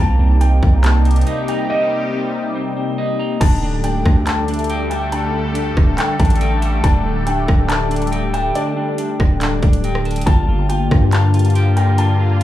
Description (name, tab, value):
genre	hip hop, atmospheric cloud-rap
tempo	140 BPM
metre	4/4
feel	half-time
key	unclear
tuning	A4 = 440 Hz
part	felt-muted upright piano	melody	0.0-12.4 s	D5 to A5	-24 LUFS	left 2 dB	low-pass filter, dub echo
part	sweeping resonant pad	sustained chords	0.0-12.4 s	C3 to A4	-22 LUFS	left 2 dB	chorus, sidechain pumping
part	electric guitar at the edge of break-up	arpeggios	0.0-12.4 s	C4 to Bb5	-26 LUFS	right 1 dB	low-pass filter, dub echo
part	long sustained 808-style bass	bass	0.0-12.4 s	D1 to G2	-16 LUFS	equal	none
part	trap drum kit	drums	0.4-12.4 s	crash cymbal, handclaps, hi-hat, kick drum, rim click	-17 LUFS	equal	none
room	digital ambience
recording	echo-heavy mix, studio reverb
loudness	-14 LUFS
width	side -13 dB against mid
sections	0.0-3.4 A section; 3.4-12.4 B section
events	break 1.7-3.4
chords	0.0 Cm7; 3.4 Dsus4; 10.3 Gm7